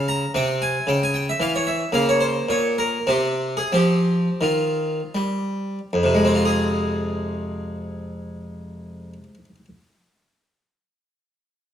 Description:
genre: classical, baroque-style suite movement for harpsichord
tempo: 74-114 BPM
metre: 3/4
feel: rubato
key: F minor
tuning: A4 = 440 Hz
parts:
  - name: harpsichord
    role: solo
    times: 0.0-9.7 s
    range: F2 to Bb5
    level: -20 LUFS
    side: equal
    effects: none
room: wet stone room reverb, RT60 1.2 s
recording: none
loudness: -19 LUFS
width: side -9 dB against mid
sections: 0.0-5.9 A section; 5.9-10.7 B section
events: slowing down 1.1-5.9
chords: 0.3 C; 1.9 Bbm/Db; 3.1 N.C.; 3.7 F5; 5.9 Fm

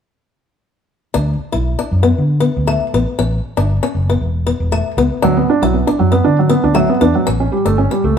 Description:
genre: highlife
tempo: 118 BPM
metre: 4/4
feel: straight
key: D major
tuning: A4 = 439 Hz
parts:
  - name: fingerpicked swing-style acoustic guitar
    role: accompaniment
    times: 1.1-8.1 s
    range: A3 to E4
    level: -18 LUFS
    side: left 5 dB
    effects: none
  - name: fingered electric bass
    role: bass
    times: 1.2-8.2 s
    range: E1 to D3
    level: -17 LUFS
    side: equal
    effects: none
  - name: felt-muted upright piano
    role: arpeggios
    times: 5.2-8.2 s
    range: F#3 to D4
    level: -14 LUFS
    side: right 4 dB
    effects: none
room: moderate large studio reverb, RT60 1.2 s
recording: band playing live in one room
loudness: -13 LUFS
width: side -8 dB against mid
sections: 1.2-8.2 A section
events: none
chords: 1.2 D5; 3.2 A7; 4.2 E5; 5.2 D6; 7.3 A7

